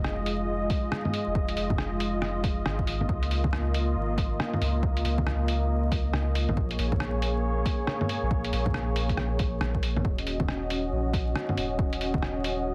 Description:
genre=future garage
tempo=138 BPM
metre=4/4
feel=swing 62% on 16ths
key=Eb minor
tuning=A4 = 440 Hz
part: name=dark analog pad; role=sustained chords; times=0.0-12.7 s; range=Ab3 to Eb5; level=-33 LUFS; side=equal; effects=chorus, sidechain pumping
part: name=warm sub bass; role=bass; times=0.0-12.7 s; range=Eb1 to Db2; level=-32 LUFS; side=equal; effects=tube saturation, sidechain pumping
part: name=lo-fi sampler-style drum kit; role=drums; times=0.0-12.5 s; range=bongos, hi-hat, rim click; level=-34 LUFS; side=equal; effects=soft clipping on snare
part: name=electronic kick drum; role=drums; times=0.7-12.2 s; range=none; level=-32 LUFS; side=equal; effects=none
room=light reverb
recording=dense, heavily limited modern master, vinyl crackle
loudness=-28 LUFS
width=mono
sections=0.0-12.7 A section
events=none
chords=0.0 Fm7; 3.1 Db69; 6.6 Bbm7; 10.0 Ebm7

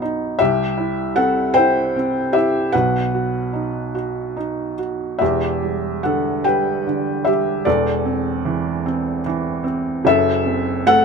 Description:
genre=classical, lyrical solo piano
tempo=47-53 BPM (dotted quarters)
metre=6/8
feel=rubato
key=E minor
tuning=A4 = 440 Hz
part: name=felt-muted upright piano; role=solo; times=0.0-11.0 s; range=E1 to G5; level=-17 LUFS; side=equal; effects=none
room=light reverb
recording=none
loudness=-17 LUFS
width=side -5 dB against mid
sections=0.0-11.0 A section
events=none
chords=0.4 C; 2.7 B; 5.2 Em7; 7.7 Am/E; 10.1 F#dim

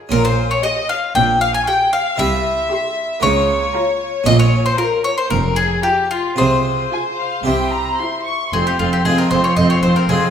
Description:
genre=classical, baroque-style concerto movement with solo episodes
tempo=115 BPM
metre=4/4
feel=straight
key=F minor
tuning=A4 = 440 Hz
part: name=harpsichord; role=accompaniment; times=0.0-10.3 s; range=F2 to Ab4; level=-22 LUFS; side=equal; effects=none
part: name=bowl-back mandolin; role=melody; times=0.1-10.3 s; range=F4 to Ab5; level=-19 LUFS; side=left 2 dB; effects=none
part: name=rich symphonic violin section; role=second line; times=0.1-10.3 s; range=F4 to Ab5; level=-22 LUFS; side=left 3 dB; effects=none
part: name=rich chamber cello section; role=bass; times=0.1-10.2 s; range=F2 to Db3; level=-21 LUFS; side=right 3 dB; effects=none
part: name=rich chamber double bass section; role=bass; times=0.1-10.2 s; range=F1 to Db2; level=-23 LUFS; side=right 3 dB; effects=none
part: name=rich chamber violin section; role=melody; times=0.6-10.3 s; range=F5 to Db6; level=-24 LUFS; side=left 2 dB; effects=none
part: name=rich chamber viola section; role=accompaniment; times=0.6-10.3 s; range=C4 to G4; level=-25 LUFS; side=right 2 dB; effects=none
room=wet recital hall reverb, RT60 1.3 s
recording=minimal, uncompressed stereo recording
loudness=-14 LUFS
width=side -8 dB against mid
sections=0.0-8.5 A section; 8.5-10.3 A section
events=none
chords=0.1 Gm7b5/Bb; 2.2 C; 3.2 Bbm/Db; 4.3 Bbm; 6.4 Fm/C; 7.5 C; 8.5 Fm

